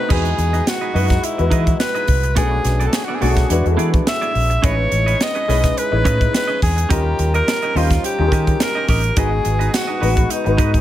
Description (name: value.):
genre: polished 1980s jazz-funk pop.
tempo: 106 BPM.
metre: 4/4.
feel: swing 54% on 16ths.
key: E major.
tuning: A4 = 441 Hz.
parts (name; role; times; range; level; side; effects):
clear alto saxophone; melody; 0.0-10.8 s; D#4 to E5; -21 LUFS; equal; none.
warm concert grand piano; accompaniment; 0.0-10.8 s; G3 to D#5; -23 LUFS; left 4 dB; ensemble chorus.
clean electric guitar; riff; 0.1-10.8 s; B3 to D#5; -27 LUFS; right 6 dB; lush chorus.
fingered electric bass; bass; 0.1-10.8 s; G#1 to E3; -18 LUFS; equal; none.
crisp fusion drum kit; drums; 0.1-10.8 s; crash cymbal, hi-hat, kick drum, snare drum; -20 LUFS; equal; gated reverb.
tambourine; percussion; 9.7-9.9 s; none; -33 LUFS; right 3 dB; none.
room: studio reverb.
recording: none.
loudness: -15 LUFS.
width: side -13 dB against mid.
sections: 0.1-10.8 A section.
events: none.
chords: 0.1 Emaj7; 2.4 Bm7; 3.5 E7; 4.6 Amaj9#11; 6.9 D#7; 9.2 G#m7.